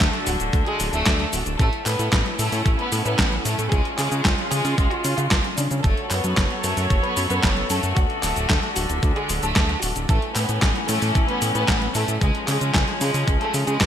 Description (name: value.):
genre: italo disco.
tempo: 113 BPM.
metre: 4/4.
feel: straight.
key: unclear.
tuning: A4 = 439 Hz.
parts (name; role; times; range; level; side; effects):
clear studio violin section; melody; 0.0-13.9 s; G#3 to B4; -26 LUFS; equal; digital delay.
rich chamber string section; sustained chords; 0.0-13.9 s; D3 to C#5; -27 LUFS; left 1 dB; none.
fat analog bass; bass; 0.0-13.9 s; D1 to C#3; -25 LUFS; equal; tube saturation.
detuned 8-bit digital drum machine; drums; 0.0-13.9 s; cabasa, handclaps, hi-hat, snare drum; -25 LUFS; equal; gated reverb.
electronic kick drum; drums; 0.0-13.9 s; none; -22 LUFS; equal; none.
room: moderate lush hall reverb, RT60 2.5 s.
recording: bright 1980s-style digital production.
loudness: -19 LUFS.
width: side -9 dB against mid.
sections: 0.0-13.9 A section.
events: none.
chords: 0.0 D; 1.6 A; 3.7 C#; 5.8 F#m; 8.0 D; 10.1 A; 12.2 C#.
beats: 0.00 0.53 1.06 | 1.59 2.13 2.66 3.19 | 3.72 4.25 4.78 5.31 | 5.84 6.37 6.91 7.44 | 7.97 8.50 9.03 9.56 | 10.09 10.62 11.15 11.68 | 12.21 12.75 13.28 13.81.